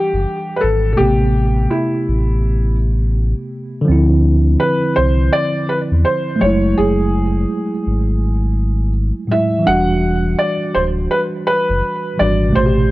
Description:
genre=lo-fi hip hop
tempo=83 BPM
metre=4/4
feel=swing 61% on 16ths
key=unclear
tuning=A4 = 440 Hz
part: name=felt-muted upright piano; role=melody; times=0.0-12.9 s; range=E4 to F#5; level=-18 LUFS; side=equal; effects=low-pass filter
part: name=mellow tine electric piano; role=accompaniment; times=0.0-12.9 s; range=A2 to F#5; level=-18 LUFS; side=right 1 dB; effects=medium stereo tremolo, cassette tape, low-pass filter
part: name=sub bass with octave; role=bass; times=0.1-12.9 s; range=D1 to E2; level=-16 LUFS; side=equal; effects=none
room=light reverb, small room ambience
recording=cassette tape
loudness=-14 LUFS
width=side -18 dB against mid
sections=0.0-12.9 A section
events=none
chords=0.0 Em9; 1.0 Am9; 3.9 Dm9; 6.4 F#m9; 9.7 Em9

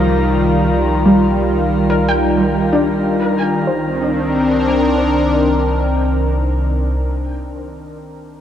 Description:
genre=ambient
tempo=70 BPM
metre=3/4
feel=straight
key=C minor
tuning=A4 = 440 Hz
part: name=warm analog pad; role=sustained chords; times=0.0-7.0 s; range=Eb3 to Bb4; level=-16 LUFS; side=left 1 dB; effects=chorus
part: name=soft round pluck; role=arpeggios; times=0.0-7.3 s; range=F3 to G5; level=-20 LUFS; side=equal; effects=lush chorus, diffuse ambient delay
part: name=deep rumbling drone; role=bass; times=0.0-7.0 s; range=C2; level=-20 LUFS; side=equal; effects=built-in reverb
part: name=drifting glass-harmonics texture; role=texture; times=0.0-3.7 s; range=Bb4 to Bb5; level=-26 LUFS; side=right 1 dB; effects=chorus, built-in reverb
room=wet cathedral reverb, RT60 7.1 s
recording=dark, warm production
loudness=-13 LUFS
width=side -10 dB against mid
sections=0.0-3.7 A section; 3.7-6.2 B section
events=none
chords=0.0 Cm9

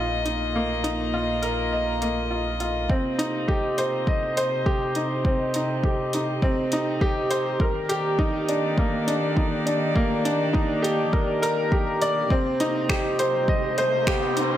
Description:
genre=piano and strings electronica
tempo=102 BPM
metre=4/4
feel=straight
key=C minor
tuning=A4 = 440 Hz
part: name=dark string quartet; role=sustained chords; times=0.0-14.6 s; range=Bb2 to Eb5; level=-29 LUFS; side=equal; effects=sidechain pumping, low-pass filter
part: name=clear upright piano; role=riff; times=0.0-14.6 s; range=Bb3 to Eb5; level=-24 LUFS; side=equal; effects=digital delay
part: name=dark detuned saw bass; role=bass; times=0.0-2.9 s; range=Bb1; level=-32 LUFS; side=equal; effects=sidechain pumping
part: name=deep house drum kit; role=drums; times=0.3-14.5 s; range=finger snaps, hi-hat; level=-32 LUFS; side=equal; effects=overdrive, high-pass filter on hats, high-pass filter on snare, high-pass filter on room
part: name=electronic kick drum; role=drums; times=2.9-14.2 s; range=none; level=-24 LUFS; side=equal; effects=overdrive
part: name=riser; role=sound effects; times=13.0-14.6 s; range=none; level=-31 LUFS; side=equal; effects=none
room=moderate echo chamber reverb, RT60 1.4 s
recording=none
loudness=-21 LUFS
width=side -11 dB against mid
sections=0.0-2.9 A section; 2.9-14.6 B section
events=build-up 2.9-14.6; riser 13.0-14.6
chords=0.0 Bbsus4; 2.9 Cm; 7.6 Ebmaj7; 12.3 Cm

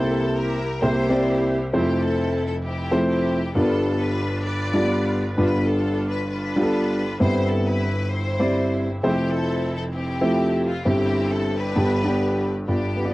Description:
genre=gospel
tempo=132 BPM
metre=4/4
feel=swing 60% on 8ths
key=C major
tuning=A4 = 440 Hz
part: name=rich studio string section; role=melody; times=0.0-13.1 s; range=B3 to D5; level=-28 LUFS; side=left 2 dB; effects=none
part: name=warm grand piano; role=accompaniment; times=0.0-13.1 s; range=F1 to D5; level=-20 LUFS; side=equal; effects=cassette tape
room=light reverb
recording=home recording on cassette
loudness=-20 LUFS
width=side -19 dB against mid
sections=0.0-12.7 A section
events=none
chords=0.0 C7; 1.7 Fmaj7; 3.6 G7; 7.2 Cmaj7/G; 9.0 Fmaj7; 10.8 C/G; 11.8 G

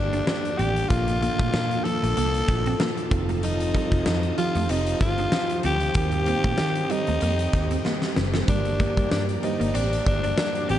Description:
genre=1980s-style pop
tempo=95 BPM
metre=4/4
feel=swing 55% on 16ths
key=F mixolydian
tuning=A4 = 441 Hz
part: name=growling tenor saxophone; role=melody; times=0.0-10.8 s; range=D4 to A4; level=-27 LUFS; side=left 2 dB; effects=digital delay
part: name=mellow tine electric piano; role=accompaniment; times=0.0-10.8 s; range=G2 to D5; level=-31 LUFS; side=right 4 dB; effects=none
part: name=overdriven electric guitar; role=accompaniment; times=0.0-10.8 s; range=F2 to C4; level=-38 LUFS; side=left 4 dB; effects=none
part: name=string machine, cellos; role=sustained chords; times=0.0-10.8 s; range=Bb3 to Eb6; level=-34 LUFS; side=left 1 dB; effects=ensemble chorus
part: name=vintage muted fingered electric bass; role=bass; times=0.0-10.8 s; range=F1 to Eb3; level=-26 LUFS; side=equal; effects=none
part: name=clean electric guitar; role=riff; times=0.1-10.8 s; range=F3 to D4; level=-32 LUFS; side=right 3 dB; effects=ensemble chorus, digital delay
part: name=huge arena drum kit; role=drums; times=0.1-10.8 s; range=hi-hat, kick drum, snare drum, tambourine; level=-26 LUFS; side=equal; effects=none
room=small room ambience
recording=dark, warm production, nothing above 10.5 kHz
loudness=-21 LUFS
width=side -11 dB against mid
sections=0.0-10.8 A section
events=drum fill 7.9-8.5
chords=0.0 Gm; 0.9 Bbmaj7; 3.1 F7; 6.0 Cm7/Eb; 8.5 Gm

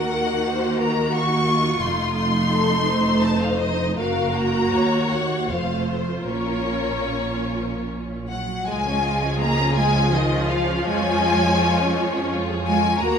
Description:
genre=classical, slow romantic movement for string orchestra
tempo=72-91 BPM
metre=3/4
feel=rubato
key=Bb minor, Db major from 8.7 s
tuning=A4 = 440 Hz
part: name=warm symphonic violin section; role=melody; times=0.0-13.2 s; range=Bb4 to Db6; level=-24 LUFS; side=left 3 dB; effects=none
part: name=warm symphonic violin section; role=second line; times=0.0-13.2 s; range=Ab3 to Db5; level=-26 LUFS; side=left 3 dB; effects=none
part: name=warm symphonic viola section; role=accompaniment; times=0.0-13.2 s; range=F3 to Gb4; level=-24 LUFS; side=right 2 dB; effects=none
part: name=dark symphonic cello section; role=bass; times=0.0-13.2 s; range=Eb2 to Bb3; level=-28 LUFS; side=right 3 dB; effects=none
part: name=warm symphonic double bass section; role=bass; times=0.0-13.2 s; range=F1 to F2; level=-27 LUFS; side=right 2 dB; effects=none
room=wet recital hall reverb, RT60 1.5 s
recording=minimal, uncompressed stereo recording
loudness=-19 LUFS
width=side -7 dB against mid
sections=0.0-8.7 A section; 8.7-13.2 B section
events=none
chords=0.0 Ebm; 1.8 F7; 4.0 Gbmaj7; 4.7 Ebm; 5.5 F; 6.3 Bbm; 8.7 Db; 10.9 Db/F

